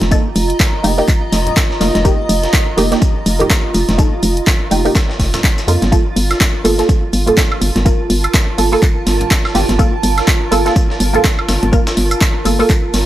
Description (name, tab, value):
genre	deep house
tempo	124 BPM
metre	4/4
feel	swing 59% on 16ths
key	G minor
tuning	A4 = 440 Hz
part	filtered dub chord stab	stabs	0.0-12.7 s	Bb3 to Bb4	-17 LUFS	right 2 dB	phaser, sidechain pumping, tape echo
part	hollow knocking FM bass	bass	0.0-13.1 s	F1 to F2	-15 LUFS	equal	tube saturation, sidechain pumping
part	deep house drum kit	drums	0.0-13.1 s	handclaps, hi-hat, woodblock	-20 LUFS	equal	studio reverb
part	electronic snare drum and tambourine	drums	0.0-13.1 s	none	-24 LUFS	equal	high-pass filter on snare, studio reverb, sidechain pumping on perc, high-pass filter on perc, high-pass filter on room
part	congas	percussion	0.0-11.7 s	none	-26 LUFS	left 1 dB	none
part	granular cloud pad	texture	0.0-13.1 s	F4 to Bb5	-21 LUFS	right 2 dB	built-in reverb, sidechain pumping
part	electronic kick drum	drums	0.1-12.8 s	none	-14 LUFS	equal	studio reverb
room	digital ambience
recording	dry, gritty hardware recording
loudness	-11 LUFS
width	side -14 dB against mid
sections	0.0-13.1 A section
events	none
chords	0.0 F7sus4; 5.9 Gm9